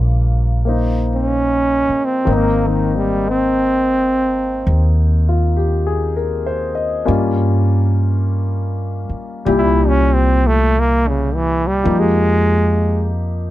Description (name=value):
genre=jazz ballad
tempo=50 BPM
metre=4/4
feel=swing 68% on 8ths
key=unclear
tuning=A4 = 440 Hz
part: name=warm grand piano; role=accompaniment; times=0.0-13.5 s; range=Bb2 to Eb5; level=-20 LUFS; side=left 4 dB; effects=none
part: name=upright bass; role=bass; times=0.0-13.5 s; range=Ab1 to G2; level=-17 LUFS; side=equal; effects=none
part: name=brilliant trombone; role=melody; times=1.1-13.1 s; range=Db3 to E4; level=-17 LUFS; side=right 1 dB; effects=none
room=little or no reverb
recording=close, detailed microphones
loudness=-14 LUFS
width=side -15 dB against mid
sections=0.0-13.5 A section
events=trombone solo 0.0-13.5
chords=0.0 Eb9; 2.3 Abadd9; 7.1 Gm7b5; 9.5 C7; 11.9 Fm11